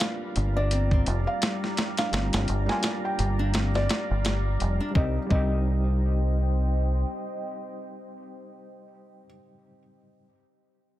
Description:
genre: trip hop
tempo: 85 BPM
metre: 4/4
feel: swing 58% on 16ths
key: C minor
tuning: A4 = 439 Hz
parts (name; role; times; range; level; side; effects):
- felt-muted upright piano; melody; 0.0-9.2 s; D5 to Ab5; -34 LUFS; equal; tape echo
- overdriven reed electric piano; accompaniment; 0.0-10.3 s; G3 to G4; -36 LUFS; right 1 dB; harmonic tremolo, tape echo
- deep dark ambient pad; sustained chords; 0.0-8.5 s; G3 to Bb5; -35 LUFS; equal; chorus, built-in reverb
- nylon-string guitar; arpeggios; 0.0-5.5 s; G3 to D4; -36 LUFS; left 2 dB; tape echo
- boom bap sampler-style drum kit; drums; 0.0-5.5 s; hi-hat, kick drum, snare drum; -27 LUFS; equal; vintage 12-bit sampler grit
- deep dub fingered electric bass; bass; 0.4-7.0 s; F1 to C2; -25 LUFS; equal; none
room: little or no reverb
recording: none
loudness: -23 LUFS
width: side -14 dB against mid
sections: 0.0-5.0 A section; 5.0-7.8 B section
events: none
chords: 0.0 Gm7; 5.0 Cm

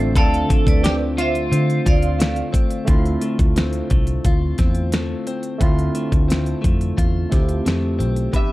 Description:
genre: indie pop, bedroom pop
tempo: 88 BPM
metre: 4/4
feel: straight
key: unclear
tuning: A4 = 440 Hz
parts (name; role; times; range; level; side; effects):
- barky tine electric piano; accompaniment; 0.0-8.5 s; C3 to G4; -26 LUFS; right 3 dB; cassette tape
- direct-recorded clean electric guitar; accompaniment; 0.0-8.5 s; C3 to B4; -26 LUFS; left 4 dB; wide subtle chorus, warbly pitch drift
- vintage muted fingered electric bass; bass; 0.0-8.3 s; A1 to D3; -21 LUFS; equal; none
- electric guitar at the edge of break-up; melody; 0.2-2.2, 8.4-8.5 s; F4 to E5; -24 LUFS; equal; lush chorus
- vibraphone with hard mallets; second line; 0.2-2.4 s; B4 to F5; -27 LUFS; right 5 dB; wide subtle chorus, tape echo
- pop drum kit; drums; 0.2-8.5 s; hi-hat, kick drum, snare drum; -18 LUFS; equal; none
room: little or no reverb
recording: dry, gritty hardware recording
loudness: -16 LUFS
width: side -18 dB against mid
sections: 0.0-2.9 A section; 2.9-8.3 B section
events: none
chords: 0.0 Dm7

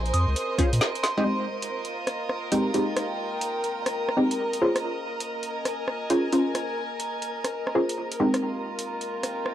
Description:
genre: UK garage, two-step garage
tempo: 134 BPM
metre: 4/4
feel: swing 63% on 16ths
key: F minor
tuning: A4 = 440 Hz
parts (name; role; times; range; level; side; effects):
- ethereal airy pad; sustained chords; 0.0-9.5 s; Bb4 to C6; -32 LUFS; left 1 dB; ensemble chorus, built-in reverb, sidechain pumping
- punchy chord stab; stabs; 0.0-9.5 s; Ab3 to C5; -26 LUFS; equal; chorus, analog delay
- saturated sub bass; bass; 0.0-0.8 s; Bb1 to Bb2; -23 LUFS; equal; none
- warm chamber string section; texture; 0.0-9.5 s; F4 to Ab5; -33 LUFS; right 1 dB; sidechain pumping
- soft synth bell; melody; 0.1-1.2 s; C6 to Eb6; -32 LUFS; right 2 dB; chorus, phaser, cassette tape, analog delay
- garage drum kit; drums; 0.1-9.5 s; hi-hat, rim click, snare drum; -28 LUFS; equal; overdrive, small room ambience, cassette tape
- electronic kick drum; drums; 0.6-0.7 s; none; -24 LUFS; equal; overdrive, small room ambience, cassette tape
room: wet booth ambience, RT60 0.2 s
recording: home recording on cassette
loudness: -24 LUFS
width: side -11 dB against mid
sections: 0.0-1.3 A section; 1.3-9.5 B section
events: band accent 0.8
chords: 0.0 Bbm9; 1.3 Fm9

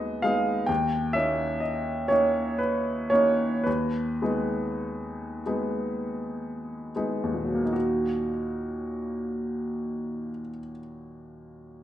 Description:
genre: classical, romantic character piece for solo piano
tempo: 35-69 BPM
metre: 3/4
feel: rubato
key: Eb minor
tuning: A4 = 443 Hz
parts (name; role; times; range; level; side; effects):
- clear upright piano; solo; 0.0-11.8 s; Eb2 to G5; -26 LUFS; equal; none
room: wet recital hall reverb, RT60 1.4 s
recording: dark, warm production, nothing above 10.6 kHz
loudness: -25 LUFS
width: side -12 dB against mid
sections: 0.0-7.7 A section; 7.7-11.8 B section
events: slowing down 0.0-7.7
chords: 0.0 Abm/Eb; 0.7 Eb5; 3.7 Abm/Eb; 7.7 Ebm

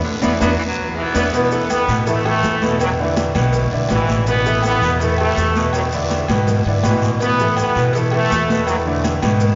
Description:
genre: latin, salsa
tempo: 163 BPM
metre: 4/4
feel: straight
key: unclear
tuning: A4 = 439 Hz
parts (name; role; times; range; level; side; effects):
- raspy baritone saxophone; second line; 0.0-1.3 s; D3 to B3; -29 LUFS; equal; none
- bright trombone; melody; 0.2-1.2 s; B3; -29 LUFS; equal; none
- clear baby grand piano; accompaniment; 0.2-9.5 s; B2 to B4; -23 LUFS; equal; none
- upright bass; bass; 0.2-9.6 s; A1 to B2; -23 LUFS; equal; none
- congas; percussion; 0.2-9.6 s; none; -29 LUFS; equal; none
- cowbell; percussion; 0.2-9.6 s; none; -30 LUFS; equal; none
- guiro; percussion; 0.2-9.6 s; none; -37 LUFS; equal; none
- maracas; percussion; 0.2-9.6 s; none; -39 LUFS; equal; none
- timbales and agogo bells; percussion; 0.2-9.4 s; none; -30 LUFS; equal; none
- brilliant trombone section; melody; 1.0-9.6 s; G#2 to B3; -23 LUFS; equal; none
room: wet cathedral reverb, RT60 4.5 s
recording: recorded in a church or concert hall, nothing above 7.5 kHz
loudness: -17 LUFS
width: mono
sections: 0.0-1.3 A section; 1.3-9.6 B section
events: band accent 0.0-1.3; drum fill 0.2-1.3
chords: 0.0 E7; 1.3 Asus2; 2.8 E7; 4.3 Asus2; 5.7 E7; 7.2 Asus2; 8.7 E7

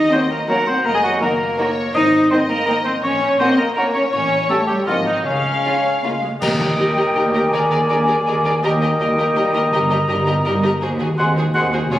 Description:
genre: cinematic, playful, whimsical film cue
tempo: 164 BPM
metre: 3/4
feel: straight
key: Db major, Eb major from 6.4 s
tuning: A4 = 440 Hz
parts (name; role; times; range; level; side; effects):
- celesta; melody; 0.0-6.0 s; Db5 to Eb6; -25 LUFS; left 2 dB; none
- dark studio violin section; melody; 0.0-12.0 s; Bb4 to Gb5; -25 LUFS; left 2 dB; none
- mellow cor anglais; second line; 0.0-11.7 s; Db4 to Gb5; -21 LUFS; equal; none
- mellow French horn section; sustained chords; 0.0-11.7 s; Db3 to Eb4; -23 LUFS; left 1 dB; none
- dark studio double bass section; bass; 0.0-12.0 s; F1 to Eb2; -25 LUFS; right 1 dB; none
- warm studio cello section; bass; 0.0-12.0 s; Eb2 to Eb4; -24 LUFS; right 1 dB; none
- flute section; second line; 0.1-11.6 s; Db5 to C6; -25 LUFS; left 1 dB; none
- rich studio violin section; second line; 0.1-12.0 s; C4 to Bb4; -28 LUFS; left 2 dB; none
- dark studio viola section; accompaniment; 0.1-12.0 s; Eb3 to Ab4; -26 LUFS; equal; none
- mellow bassoon; accompaniment; 0.1-11.7 s; Gb3 to C4; -26 LUFS; right 1 dB; none
- clash cymbals and concert bass drum; percussion; 6.4-7.1 s; none; -26 LUFS; left 1 dB; none
room: wet concert hall reverb, RT60 1.9 s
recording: recorded on a phone in the room, club reverb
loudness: -15 LUFS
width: side -13 dB against mid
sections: 0.0-6.4 A section; 6.4-12.0 B section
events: band accent 6.4-6.8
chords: 0.0 Ebm7; 0.9 Ebm/Gb; 1.9 Ab; 3.0 Gb/Bb; 4.1 A7; 4.9 Abadd9; 5.3 Db; 6.4 Eb; 7.5 Bb7/Eb; 8.6 Eb; 9.7 Eb/G; 10.8 Ab7/Eb

